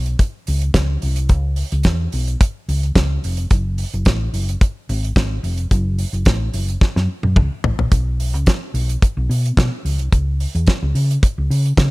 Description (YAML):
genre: disco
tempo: 109 BPM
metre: 4/4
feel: straight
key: unclear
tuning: A4 = 440 Hz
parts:
  - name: hollow-body short-scale fingered electric bass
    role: bass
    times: 0.0-11.9 s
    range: E#1 to C#3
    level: -18 LUFS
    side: equal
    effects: none
  - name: damped 70s drum kit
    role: drums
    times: 0.1-11.9 s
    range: hi-hat, kick drum, snare drum, toms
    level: -17 LUFS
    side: equal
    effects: none
room: little or no reverb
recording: none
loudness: -16 LUFS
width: side -22 dB against mid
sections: 0.0-7.9 A section; 7.9-11.9 B section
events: drum fill 6.8-7.9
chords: none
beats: 0.20 0.75 | 1.30 1.85 2.40 2.96 | 3.51 4.06 4.61 5.16 | 5.71 6.26 6.82 7.37 | 7.92 8.47 9.02 9.57 | 10.12 10.68 11.23 11.78